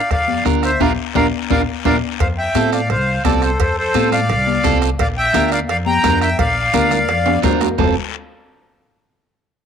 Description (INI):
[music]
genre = latin, cumbia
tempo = 172 BPM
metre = 4/4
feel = straight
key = F major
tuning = A4 = 440 Hz
[part]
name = accordion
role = melody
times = 0.0-7.4 s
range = A4 to Bb5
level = -18 LUFS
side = left 1 dB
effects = none
[part]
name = upright bass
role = bass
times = 0.1-7.9 s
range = F1 to A2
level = -22 LUFS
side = equal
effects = none
[part]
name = bombo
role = percussion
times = 0.1-7.9 s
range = none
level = -23 LUFS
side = left 1 dB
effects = none
[part]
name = congas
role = percussion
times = 0.1-7.9 s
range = none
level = -23 LUFS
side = left 15 dB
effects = none
[part]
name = cowbell and timbales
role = percussion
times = 0.1-7.9 s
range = none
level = -25 LUFS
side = right 14 dB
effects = none
[part]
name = guiro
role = percussion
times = 0.1-7.9 s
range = none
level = -32 LUFS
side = left 14 dB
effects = none
[part]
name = electric guitar at the edge of break-up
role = accompaniment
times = 0.5-7.9 s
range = C4 to Bb4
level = -22 LUFS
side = right 11 dB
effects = none
[part]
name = mellow clarinet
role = second line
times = 6.7-7.9 s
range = A4 to D5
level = -24 LUFS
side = left 11 dB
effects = none
[sound]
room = moderate spring reverb, RT60 1.6 s, small room ambience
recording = 1960s-style stereo with parts hard left and right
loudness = -14 LUFS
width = side -7 dB against mid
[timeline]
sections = 0.0-2.2 A section; 2.2-7.8 B section; 7.8-9.2 C section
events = band accent 0.8-2.2; drum fill 1.7-2.2, 7.3-7.8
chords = 0.0 Bb; 2.2 F; 5.0 Bb; 7.8 F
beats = 0.11 0.46 | 0.81 1.16 1.50 1.85 | 2.20 2.55 2.90 3.25 | 3.60 3.95 4.30 4.64 | 4.99 5.34 5.69 6.04 | 6.39 6.74 7.09 7.43 | 7.78